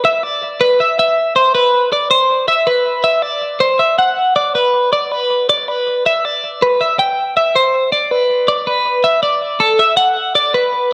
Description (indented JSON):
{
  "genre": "rock",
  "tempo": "160 BPM",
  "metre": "4/4",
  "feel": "straight",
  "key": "C lydian",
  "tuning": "A4 = 440 Hz",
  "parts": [
    { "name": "twelve-string electric guitar", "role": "solo", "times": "0.0-10.9 s", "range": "A4 to G5", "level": "-14 LUFS", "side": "equal", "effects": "spring reverb, analog delay" }
  ],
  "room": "light reverb",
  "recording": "home recording on cassette",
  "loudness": "-14 LUFS",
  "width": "mono",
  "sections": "0.0-4.0 A section; 4.0-10.9 B section",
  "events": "none",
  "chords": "none"
}